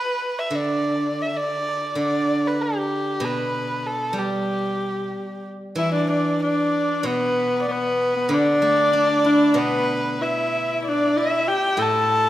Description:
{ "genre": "chinese traditional, Chinese chamber ensemble", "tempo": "95 BPM", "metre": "2/4", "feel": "rubato", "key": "unclear", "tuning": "A4 = 439 Hz", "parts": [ { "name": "dark erhu", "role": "melody", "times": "0.0-12.3 s", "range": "G4 to A5", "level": "-23 LUFS", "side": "equal", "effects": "none" }, { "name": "steel-string zither", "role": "accompaniment", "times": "0.5-12.3 s", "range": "A2 to E4", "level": "-25 LUFS", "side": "right 1 dB", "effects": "none" }, { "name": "edgy alto saxophone", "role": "second line", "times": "5.8-12.3 s", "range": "B3 to A4", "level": "-22 LUFS", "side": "left 2 dB", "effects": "none" } ], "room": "wet recital hall reverb, RT60 1.7 s", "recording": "none", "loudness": "-19 LUFS", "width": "side -13 dB against mid", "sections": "0.0-5.8 A section; 5.8-12.3 B section", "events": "none", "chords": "none" }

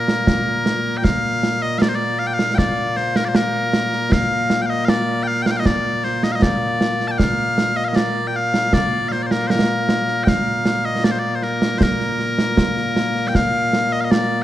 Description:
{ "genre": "scottish traditional, Scottish pipe music", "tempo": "78 BPM", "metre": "2/4", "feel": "straight", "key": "Bb major", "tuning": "A4 = 441 Hz", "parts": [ { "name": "loud bright bagpipes", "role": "melody", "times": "0.0-14.4 s", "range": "Bb2 to A5", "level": "-19 LUFS", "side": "left 1 dB", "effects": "none" }, { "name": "concert snare drum and concert bass drum", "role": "drums", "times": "0.1-14.3 s", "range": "none", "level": "-20 LUFS", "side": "right 1 dB", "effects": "none" } ], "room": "moderate concert hall reverb, RT60 2.2 s", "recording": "dark, warm production", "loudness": "-16 LUFS", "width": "side -13 dB against mid", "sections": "0.0-1.0 A section; 1.0-13.4 B section; 13.4-14.4 B section", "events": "none", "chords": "none" }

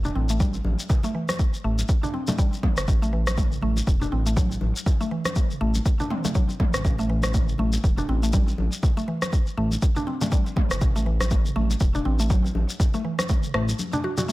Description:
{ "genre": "afro house", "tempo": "121 BPM", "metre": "4/4", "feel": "swing 58% on 16ths", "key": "A dorian", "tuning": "A4 = 440 Hz", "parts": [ { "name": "mallet-like synth pluck", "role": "arpeggios", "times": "0.0-14.3 s", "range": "E3 to F#4", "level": "-29 LUFS", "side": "equal", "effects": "chorus, sidechain pumping, digital delay" }, { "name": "smooth synth bass", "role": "bass", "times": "0.0-13.7 s", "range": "E1 to A1", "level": "-25 LUFS", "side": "equal", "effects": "sidechain pumping" }, { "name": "shekere", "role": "percussion", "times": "0.0-14.3 s", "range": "none", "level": "-35 LUFS", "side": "left 3 dB", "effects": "none" }, { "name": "congas", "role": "percussion", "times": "0.1-14.3 s", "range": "none", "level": "-32 LUFS", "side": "left 2 dB", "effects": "none" }, { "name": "electronic kick drum", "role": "drums", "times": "0.4-13.4 s", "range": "none", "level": "-22 LUFS", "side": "equal", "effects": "none" }, { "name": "deep house drum kit", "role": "drums", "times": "1.3-13.7 s", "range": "rim click, toms", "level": "-29 LUFS", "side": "right 1 dB", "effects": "none" } ], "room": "digital ambience", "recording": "none", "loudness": "-21 LUFS", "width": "side -18 dB against mid", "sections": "0.0-14.3 A section", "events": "break 13.8-14.3", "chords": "0.0 A7(no3); 2.9 Dsus2 (rootless); 6.8 A5; 10.8 Dsus2 (rootless)" }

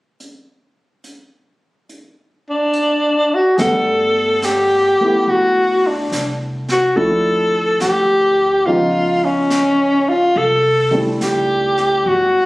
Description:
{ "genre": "jazz ballad", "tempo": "71 BPM", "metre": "4/4", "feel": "swing 68% on 8ths", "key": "G major", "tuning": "A4 = 442 Hz", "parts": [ { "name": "jazz brush drum kit", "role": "drums", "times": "0.2-12.5 s", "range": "brushed snare drum, hi-hat, snare drum", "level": "-29 LUFS", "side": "right 1 dB", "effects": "none" }, { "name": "breathy alto saxophone", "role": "melody", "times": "2.5-12.5 s", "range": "C#4 to A4", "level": "-14 LUFS", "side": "equal", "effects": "none" }, { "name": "warm concert grand piano", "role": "accompaniment", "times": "3.6-12.5 s", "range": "F3 to F#5", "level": "-22 LUFS", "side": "equal", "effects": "none" }, { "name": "upright bass", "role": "bass", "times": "3.6-12.5 s", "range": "G1 to D2", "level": "-28 LUFS", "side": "equal", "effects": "none" } ], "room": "light reverb", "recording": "recorded on a phone in the room, studio reverb", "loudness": "-13 LUFS", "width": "side -20 dB against mid", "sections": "0.2-3.6 A section; 3.6-12.5 B section", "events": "none", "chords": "0.2 N.C.; 3.6 Gmaj9; 7.0 Dm7; 8.7 C#9; 10.4 C69" }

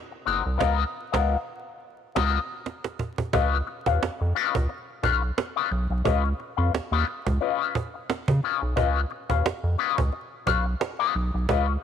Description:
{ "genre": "funk", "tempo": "88 BPM", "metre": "4/4", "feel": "swing 56% on 16ths", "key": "unclear", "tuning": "A4 = 440 Hz", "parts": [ { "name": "electric guitar with an envelope filter", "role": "accompaniment", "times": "0.1-11.7 s", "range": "Cb4 to F5", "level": "-27 LUFS", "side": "left 11 dB", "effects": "wah" }, { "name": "round analog bass", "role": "bass", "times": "0.3-11.8 s", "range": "Gb1 to Db3", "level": "-24 LUFS", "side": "equal", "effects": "none" }, { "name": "cajon", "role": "drums", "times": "0.6-11.8 s", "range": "none", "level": "-29 LUFS", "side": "right 6 dB", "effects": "none" } ], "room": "light reverb, small room ambience", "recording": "1960s-style stereo with parts hard left and right, vinyl crackle", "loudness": "-23 LUFS", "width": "side -8 dB against mid", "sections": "0.0-3.3 A section; 3.3-11.8 B section", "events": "band accent 0.6-3.3; drum fill 2.6-3.3", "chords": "0.0 Ab9 (rootless); 0.6 Db13; 3.3 Db9" }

